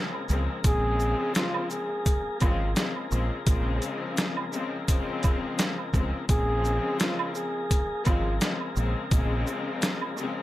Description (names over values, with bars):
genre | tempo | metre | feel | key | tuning
hip hop, boom-bap hip-hop | 85 BPM | 4/4 | swing 55% on 16ths | Bb minor | A4 = 437 Hz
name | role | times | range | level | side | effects
warm studio string section | accompaniment | 0.0-10.4 s | Db3 to C4 | -32 LUFS | left 4 dB | cassette tape, high-pass filter, low-pass filter
tonewheel organ | sustained chords | 0.0-10.4 s | Bb3 to Bb4 | -38 LUFS | equal | overdrive, fast rotary speaker, high-pass filter, low-pass filter
woodblock and tube shaker | percussion | 0.1-10.4 s | none | -36 LUFS | right 7 dB | none
deep dub fingered electric bass | bass | 0.3-9.4 s | Ab1 to Db2 | -27 LUFS | equal | none
trip hop sampler-style drum kit | drums | 0.3-10.4 s | hi-hat, kick drum, shaker, snare drum | -25 LUFS | equal | none
trumpet with bucket mute | melody | 0.7-8.4 s | F4 to Ab4 | -30 LUFS | equal | high-pass filter, low-pass filter, digital delay
room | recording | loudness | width
light reverb | none | -24 LUFS | side -15 dB against mid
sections
0.0-10.4 A section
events
none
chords
0.0 Bbm7